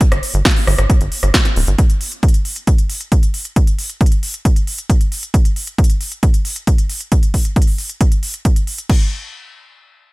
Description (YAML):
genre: uplifting trance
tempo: 135 BPM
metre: 4/4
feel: straight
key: unclear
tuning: A4 = 442 Hz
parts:
  - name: big-room dance drum kit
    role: drums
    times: 0.0-9.0 s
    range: crash cymbal, hi-hat, rim click, snare drum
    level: -22 LUFS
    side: equal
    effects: none
  - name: electronic kick drum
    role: drums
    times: 0.0-9.0 s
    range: none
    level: -13 LUFS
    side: equal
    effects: none
  - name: tight sequencer bass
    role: bass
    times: 0.1-1.8 s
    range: D1 to G1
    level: -15 LUFS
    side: equal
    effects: sidechain pumping
room: little or no reverb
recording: none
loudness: -13 LUFS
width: side -23 dB against mid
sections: 0.0-8.9 A section; 8.9-10.1 B section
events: none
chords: none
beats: | 0.01 0.45 0.90 1.34 | 1.78 2.23 2.67 3.12 | 3.56 4.01 4.45 4.89 | 5.34 5.78 6.23 6.67 | 7.12 7.56 8.01 8.45 | 8.89